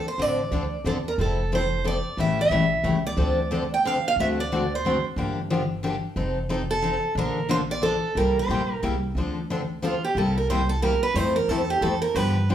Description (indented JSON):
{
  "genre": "acoustic string swing (jazz manouche)",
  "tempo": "181 BPM",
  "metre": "3/4",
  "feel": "swing 62% on 8ths",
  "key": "F major, D minor from 9.2 s",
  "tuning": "A4 = 437 Hz",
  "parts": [
    { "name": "picked steel-string acoustic guitar", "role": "melody", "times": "0.0-12.5 s", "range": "F4 to G5", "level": "-25 LUFS", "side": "right 3 dB", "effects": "none" },
    { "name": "picked steel-string acoustic guitar", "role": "accompaniment", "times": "0.2-12.5 s", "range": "C3 to A4", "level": "-26 LUFS", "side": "left 2 dB", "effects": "none" },
    { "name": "upright bass", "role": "bass", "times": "0.2-12.5 s", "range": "F1 to G2", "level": "-29 LUFS", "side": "right 1 dB", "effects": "none" }
  ],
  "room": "wet large studio reverb, RT60 0.8 s",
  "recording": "band playing live in one room",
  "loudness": "-22 LUFS",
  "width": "side -10 dB against mid",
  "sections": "0.0-1.2 A section; 1.2-9.2 B section; 9.2-12.5 C section",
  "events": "steel-string acoustic guitar solo 9.2-12.5",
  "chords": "0.0 Dm7; 1.2 Fmaj7; 2.2 A7; 3.2 Dm7; 4.2 D7; 5.2 Gm7; 6.2 F7; 7.2 Bbmaj7; 8.2 C7; 9.2 Dm7; 10.2 C7; 11.1 Fmaj7"
}